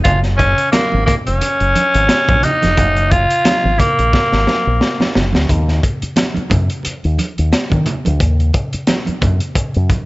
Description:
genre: funk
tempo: 88 BPM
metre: 4/4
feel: swing 56% on 16ths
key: Eb minor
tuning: A4 = 440 Hz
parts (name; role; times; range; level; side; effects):
- raspy tenor saxophone; melody; 0.0-5.1 s; Bb3 to F4; -14 LUFS; equal; none
- fingered electric bass with an envelope filter; bass; 0.0-9.9 s; F1 to Eb3; -16 LUFS; equal; none
- crunchy breakbeat drum kit; drums; 0.0-10.1 s; hi-hat, kick drum, snare drum; -17 LUFS; equal; none
- congas; percussion; 0.1-10.1 s; none; -23 LUFS; right 3 dB; none
room: light reverb, small room reverb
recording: nothing above 7.8 kHz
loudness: -12 LUFS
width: side -21 dB against mid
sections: 0.0-5.5 A section; 5.5-10.1 B section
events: drum fill 4.1-5.5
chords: 0.0 Gbadd9; 5.5 Ebm

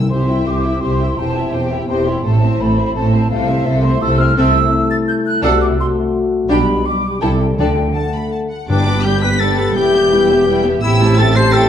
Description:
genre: quick classical-period movement for symphony orchestra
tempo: 168 BPM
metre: 3/4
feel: straight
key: C major, G major from 4.4 s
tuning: A4 = 441 Hz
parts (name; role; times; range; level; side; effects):
- warm symphonic violin section; melody; 0.0-11.7 s; C5 to C7; -25 LUFS; left 3 dB; none
- dark studio double bass section; bass; 0.0-11.7 s; E1 to D2; -19 LUFS; right 2 dB; none
- timpani; percussion; 0.0-0.1, 7.6-9.2 s; G2 to D3; -21 LUFS; left 1 dB; none
- hollow small flute group; second line; 0.1-8.5 s; E5 to A6; -20 LUFS; right 1 dB; none
- rich studio violin section; second line; 0.1-11.7 s; G4 to B5; -24 LUFS; left 1 dB; none
- warm studio viola section; accompaniment; 0.1-11.7 s; G3 to G4; -21 LUFS; equal; none
- mellow French horn section; sustained chords; 0.1-11.7 s; G3 to A4; -19 LUFS; left 3 dB; none
- warm studio cello section; bass; 0.1-11.7 s; C2 to D3; -22 LUFS; right 2 dB; none
- clear clarinet; second line; 8.7-11.7 s; D4 to C5; -19 LUFS; left 4 dB; none
- warm oboe; second line; 8.7-11.7 s; D4 to C5; -23 LUFS; equal; none
room: wet recital hall reverb, RT60 1.7 s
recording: dark, warm production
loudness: -13 LUFS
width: side -9 dB against mid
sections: 0.1-8.7 A section; 8.7-11.7 B section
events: none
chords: 0.1 C; 1.2 C/E; 2.2 Am; 3.3 Am/C; 5.4 D7/C; 6.5 G/B; 7.2 Am7/C; 7.6 D; 8.7 G; 9.8 Em; 10.8 Am7

